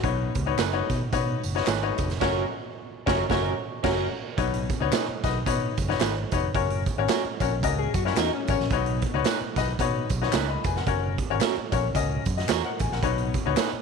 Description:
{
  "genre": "uptempo 1960s-style soul",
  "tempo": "111 BPM",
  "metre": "4/4",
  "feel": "swing 58% on 8ths",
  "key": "B major",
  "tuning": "A4 = 440 Hz",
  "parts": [
    { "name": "clear baby grand piano", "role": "accompaniment", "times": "0.0-13.8 s", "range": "B2 to B5", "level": "-28 LUFS", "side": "left 13 dB", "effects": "none" },
    { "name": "fingered electric bass", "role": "bass", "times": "0.0-13.8 s", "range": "E#1 to B2", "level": "-29 LUFS", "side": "equal", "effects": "none" },
    { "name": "raw garage drum kit", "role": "drums", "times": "0.0-13.7 s", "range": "crash cymbal, hi-hat, kick drum, snare drum", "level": "-28 LUFS", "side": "right 5 dB", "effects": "none" },
    { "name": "electric guitar through a small old amp", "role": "stabs", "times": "0.6-13.7 s", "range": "C#4 to B4", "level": "-32 LUFS", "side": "right 13 dB", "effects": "harmonic tremolo, slapback echo" },
    { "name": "handclaps and tambourine", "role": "percussion", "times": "0.6-13.7 s", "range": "none", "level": "-39 LUFS", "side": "left 3 dB", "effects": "none" },
    { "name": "electric guitar through a small old amp", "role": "riff", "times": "7.6-8.7 s", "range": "C#4 to A#4", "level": "-32 LUFS", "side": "left 14 dB", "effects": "analog chorus" }
  ],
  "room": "light reverb, small room ambience",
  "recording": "1960s-style stereo with parts hard left and right",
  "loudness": "-23 LUFS",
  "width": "side -5 dB against mid",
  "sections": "0.0-4.4 A section; 4.4-13.8 B section",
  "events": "band accent 2.2-4.4",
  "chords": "0.0 Badd9; 2.2 F#; 4.4 Badd9; 6.5 F#; 8.7 Badd9; 10.9 F#; 13.0 Badd9",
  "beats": "| 0.04 0.58 1.12 1.67 | 2.21 2.75 3.29 3.84 | 4.38 4.92 5.46 6.00 | 6.55 7.09 7.63 8.17 | 8.71 9.25 9.79 10.33 | 10.87 11.41 11.95 12.49 | 13.03 13.57"
}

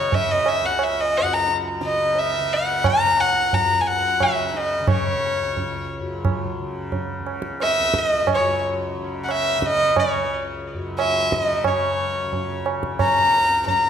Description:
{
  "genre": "indian classical, Hindustani",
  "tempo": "89 BPM",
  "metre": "5/4",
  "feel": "straight",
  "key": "C# raga bageshri",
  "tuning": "A4 = 439 Hz",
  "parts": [
    { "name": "warm violin", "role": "melody", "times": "0.0-13.9 s", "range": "C#5 to A#5", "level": "-20 LUFS", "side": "left 1 dB", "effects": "tape echo" },
    { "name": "tanpura", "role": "drone", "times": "0.0-13.9 s", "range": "C#2 to C#3", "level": "-30 LUFS", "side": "left 1 dB", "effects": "none" },
    { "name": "tabla", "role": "percussion", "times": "0.1-13.9 s", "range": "none", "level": "-24 LUFS", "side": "right 4 dB", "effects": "none" }
  ],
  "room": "wet recital hall reverb, RT60 1.4 s",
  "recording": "none",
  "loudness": "-19 LUFS",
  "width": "side -8 dB against mid",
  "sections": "0.0-11.7 A section; 11.7-13.9 B section",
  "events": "none",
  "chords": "none",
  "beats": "0.12 0.81 | 1.49 2.17 2.85 3.53 4.21 | 4.89 5.57 6.25 6.92 7.60 | 8.28 8.96 9.63 10.30 10.98 | 11.65 12.33 13.00 13.67"
}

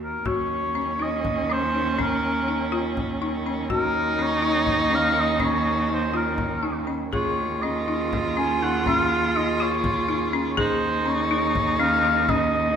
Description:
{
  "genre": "contemporary instrumental, chamber music in an uneven meter",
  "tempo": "244 BPM (eighths)",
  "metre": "7/8",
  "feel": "straight",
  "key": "Eb minor",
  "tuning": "A4 = 440 Hz",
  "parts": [
    { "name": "mellow oboe", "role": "melody", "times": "0.0-12.8 s", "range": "Bb4 to Ab5", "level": "-25 LUFS", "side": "left 1 dB", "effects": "none" },
    { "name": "folk marimba with medium hard mallets", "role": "arpeggios", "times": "0.0-12.6 s", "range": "Db4 to Ab4", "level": "-28 LUFS", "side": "left 3 dB", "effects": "none" },
    { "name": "rich cello", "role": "bass", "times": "0.0-12.8 s", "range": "Eb2", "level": "-28 LUFS", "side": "right 3 dB", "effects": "none" },
    { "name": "rich viola", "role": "second line", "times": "0.2-12.8 s", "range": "Db4 to F4", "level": "-27 LUFS", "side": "right 3 dB", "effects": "none" },
    { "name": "clear woodwind section", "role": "sustained chords", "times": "0.2-12.8 s", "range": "Eb3 to Ab4", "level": "-35 LUFS", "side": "equal", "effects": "none" },
    { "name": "frame drum", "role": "percussion", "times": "0.3-12.5 s", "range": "none", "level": "-33 LUFS", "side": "left 2 dB", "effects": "none" }
  ],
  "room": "moderate scoring stage reverb, RT60 1.6 s",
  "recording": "none",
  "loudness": "-21 LUFS",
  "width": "side -7 dB against mid",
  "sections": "0.3-12.8 A section",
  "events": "none",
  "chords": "0.3 Ebm7; 7.1 Dbsus2/Eb",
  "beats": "0.00 | 0.25 0.50 0.75 1.00 1.24 1.49 1.74 | 1.98 2.23 2.47 2.72 2.96 3.21 3.46 | 3.70 3.94 4.19 4.43 4.67 4.92 5.16 | 5.40 5.65 5.89 6.14 6.38 6.63 6.88 | 7.13 7.38 7.63 7.88 8.13 8.38 8.62 | 8.87 9.11 9.36 9.60 9.85 10.10 10.34 | 10.58 10.83 11.07 11.31 11.56 11.80 12.05 | 12.29 12.54"
}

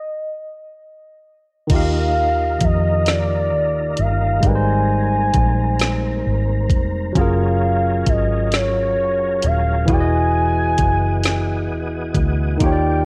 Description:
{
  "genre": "slow six-eight R&B",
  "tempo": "44 BPM (dotted quarters)",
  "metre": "6/8",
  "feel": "straight",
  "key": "unclear",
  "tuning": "A4 = 437 Hz",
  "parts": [
    { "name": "gliding portamento lead", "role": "melody", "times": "0.0-13.1 s", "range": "Db5 to Ab5", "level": "-24 LUFS", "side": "equal", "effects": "chorus" },
    { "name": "barky tine electric piano", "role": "accompaniment", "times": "1.7-13.1 s", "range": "Eb3 to F5", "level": "-25 LUFS", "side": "equal", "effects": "none" },
    { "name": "tonewheel organ", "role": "sustained chords", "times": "1.7-13.1 s", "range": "Eb3 to D#5", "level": "-32 LUFS", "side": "equal", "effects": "chorus vibrato, fast rotary speaker" },
    { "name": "vintage muted fingered electric bass", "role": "bass", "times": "1.7-13.1 s", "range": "Eb1 to F2", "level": "-23 LUFS", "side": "equal", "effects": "none" },
    { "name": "smooth R&B drum kit", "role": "drums", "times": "1.7-12.8 s", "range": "crash cymbal, hi-hat, kick drum, snare drum", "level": "-22 LUFS", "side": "equal", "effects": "none" }
  ],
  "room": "light reverb, digital ambience",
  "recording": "worn, warbling old tape, cassette tape, warbly pitch drift",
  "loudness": "-18 LUFS",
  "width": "mono",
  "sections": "0.0-1.7 A section; 1.7-13.1 B section",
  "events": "stop 0.0-1.7",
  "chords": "0.0 N.C.; 1.7 Ebmaj9; 4.4 Abmaj9; 7.2 Gbmaj9; 9.9 Emaj9",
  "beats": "0.34 | 1.70 3.06 | 4.43 5.79 | 7.15 8.52 | 9.88 11.24 | 12.61"
}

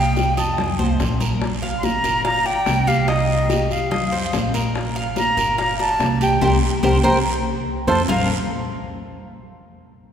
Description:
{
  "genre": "latin, Cuban son and guajira",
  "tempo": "144 BPM",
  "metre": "4/4",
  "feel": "straight",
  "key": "Bb major",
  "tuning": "A4 = 441 Hz",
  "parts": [
    { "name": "silver concert flute", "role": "melody", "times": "0.0-8.3 s", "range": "Eb5 to C6", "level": "-22 LUFS", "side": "equal", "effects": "none" },
    { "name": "Cuban tres", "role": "arpeggios", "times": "0.0-8.3 s", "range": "Bb3 to F5", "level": "-24 LUFS", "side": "right 1 dB", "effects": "none" },
    { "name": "upright bass", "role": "bass", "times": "0.0-8.3 s", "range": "G1 to F2", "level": "-23 LUFS", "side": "right 1 dB", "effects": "none" },
    { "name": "bongos", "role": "percussion", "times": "0.2-8.2 s", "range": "none", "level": "-28 LUFS", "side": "left 4 dB", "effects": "none" },
    { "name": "congas", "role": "percussion", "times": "0.2-8.2 s", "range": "none", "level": "-26 LUFS", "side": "left 2 dB", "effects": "none" },
    { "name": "guiro", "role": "percussion", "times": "0.2-8.2 s", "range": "none", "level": "-32 LUFS", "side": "right 4 dB", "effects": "none" }
  ],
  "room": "wet church reverb, RT60 3.0 s",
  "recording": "recorded in a church or concert hall",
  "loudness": "-17 LUFS",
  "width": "side -8 dB against mid",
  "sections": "0.0-1.4 A section; 1.4-8.1 B section; 8.1-9.8 C section",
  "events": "drum fill 0.8-1.4, 7.5-8.1; band accent 6.4-8.1",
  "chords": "0.0 Cm; 0.6 F7; 1.4 Bb5; 2.2 G5; 3.1 Cm; 3.9 F5; 4.8 Bb5; 5.6 G5; 6.4 C5; 7.3 F; 8.1 Bb5",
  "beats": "0.17 0.58 1.00 | 1.42 1.83 2.25 2.67 | 3.08 3.50 3.92 4.33 | 4.75 5.17 5.58 6.00 | 6.42 6.83 7.25 7.67 | 8.08"
}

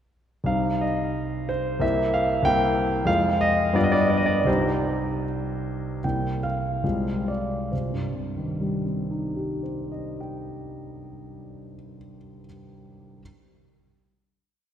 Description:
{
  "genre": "classical, romantic character piece for solo piano",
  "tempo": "62-98 BPM",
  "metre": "2/4",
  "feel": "rubato",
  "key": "C minor",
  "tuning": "A4 = 436 Hz",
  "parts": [
    { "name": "clear concert grand piano", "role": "solo", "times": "0.4-13.2 s", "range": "C2 to G5", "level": "-23 LUFS", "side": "equal", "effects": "none" }
  ],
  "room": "wet church reverb, RT60 2.7 s",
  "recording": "faint mains hum",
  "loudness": "-22 LUFS",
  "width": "side -9 dB against mid",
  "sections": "0.5-6.0 A section; 6.0-7.7 coda; 7.7-11.0 final chord",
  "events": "slowing down 3.8-7.7",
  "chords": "0.5 Cm; 1.8 C7; 3.1 Fm; 3.8 G7; 4.5 Cm; 6.0 C7; 6.8 Fm/C; 7.7 Cm",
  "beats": "| 0.46 1.16 | 1.82 2.45 | 3.07 3.75 | 4.47 5.23 | 6.04 6.83 | 7.72 8.52 | 9.34 10.16"
}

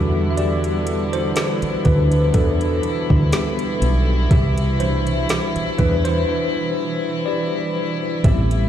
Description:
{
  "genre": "contemporary R&B",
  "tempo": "61 BPM",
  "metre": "4/4",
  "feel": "swing 54% on 16ths",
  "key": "unclear",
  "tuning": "A4 = 443 Hz",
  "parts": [
    { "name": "bell-like tine electric piano", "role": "accompaniment", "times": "0.0-8.7 s", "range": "B2 to E5", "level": "-22 LUFS", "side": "left 1 dB", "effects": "medium stereo tremolo" },
    { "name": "warm studio string section", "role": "sustained chords", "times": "0.0-8.7 s", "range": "B2 to E4", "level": "-25 LUFS", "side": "right 1 dB", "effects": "none" },
    { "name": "woody fretless electric bass", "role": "bass", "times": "0.0-8.7 s", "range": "A1 to E2", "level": "-18 LUFS", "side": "equal", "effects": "analog chorus" },
    { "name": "smooth R&B drum kit", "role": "drums", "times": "0.4-8.7 s", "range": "hi-hat, kick drum, snare drum", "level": "-18 LUFS", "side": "equal", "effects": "none" }
  ],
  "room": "digital ambience",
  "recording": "played on a big sound system in a bare room, large studio reverb",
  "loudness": "-17 LUFS",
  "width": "side -10 dB against mid",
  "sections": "0.0-8.7 A section",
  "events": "tine electric piano solo 0.0-8.7; break 6.3-8.2",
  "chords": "0.0 Em7; 4.3 Cmaj7",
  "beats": "| 0.37 1.36 2.34 3.33 | 4.31 5.29 6.28 7.26 | 8.24"
}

